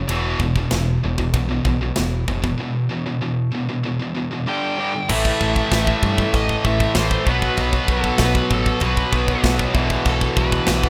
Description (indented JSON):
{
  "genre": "heavy metal",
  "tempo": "96 BPM",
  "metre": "4/4",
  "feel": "straight",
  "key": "E minor",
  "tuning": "A4 = 439 Hz",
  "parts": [
    { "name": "high-gain distorted guitar", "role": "riff", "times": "0.0-10.9 s", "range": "E2 to B3", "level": "-28 LUFS", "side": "equal", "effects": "distortion" },
    { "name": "tight distorted guitar", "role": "riff", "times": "0.0-10.9 s", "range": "E2 to B3", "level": "-26 LUFS", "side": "equal", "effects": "distortion" },
    { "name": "deep dub picked electric bass", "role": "bass", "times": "0.0-10.9 s", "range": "E1 to G2", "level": "-25 LUFS", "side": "equal", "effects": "none" },
    { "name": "tight metal drum kit", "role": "drums", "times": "0.1-10.9 s", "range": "china cymbal, crash cymbal, kick drum, ride cymbal, snare drum", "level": "-25 LUFS", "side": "equal", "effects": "none" },
    { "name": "nasal lead guitar with a parked wah", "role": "melody", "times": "4.5-10.9 s", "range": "A4 to G5", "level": "-27 LUFS", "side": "equal", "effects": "overdrive, delay" },
    { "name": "crunchy overdriven guitar", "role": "riff", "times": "5.1-10.9 s", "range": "E2 to B3", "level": "-29 LUFS", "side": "equal", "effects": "none" }
  ],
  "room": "light reverb",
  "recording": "rough home demo mix",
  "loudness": "-20 LUFS",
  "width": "mono",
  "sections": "0.0-5.1 A section; 5.1-10.9 B section",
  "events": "break 2.6-5.1",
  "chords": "0.1 E5; 4.5 G5; 5.1 A5; 7.3 B5; 9.8 E5/B",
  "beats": "| 0.09 0.72 1.34 1.97 | 2.59 3.22 3.84 4.46 | 5.09 5.71 6.33 6.95 | 7.57 8.20 8.82 9.44 | 10.06 10.69"
}